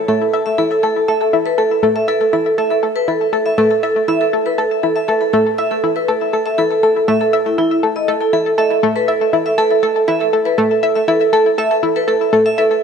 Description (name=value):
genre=ambient, sequencer-driven space music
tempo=120 BPM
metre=4/4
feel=straight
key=unclear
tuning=A4 = 440 Hz
part: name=vibraphone with medium hard mallets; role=arpeggios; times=0.1-12.8 s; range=E4 to E5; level=-15 LUFS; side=right 2 dB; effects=auto-pan, ping-pong delay
part: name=analog pluck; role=riff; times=0.1-12.7 s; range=A3 to E5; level=-17 LUFS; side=left 2 dB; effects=chorus, ping-pong delay
room=wet plate reverb, RT60 3.5 s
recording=cassette tape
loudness=-13 LUFS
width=side -6 dB against mid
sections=0.0-12.8 A section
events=none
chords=0.0 A5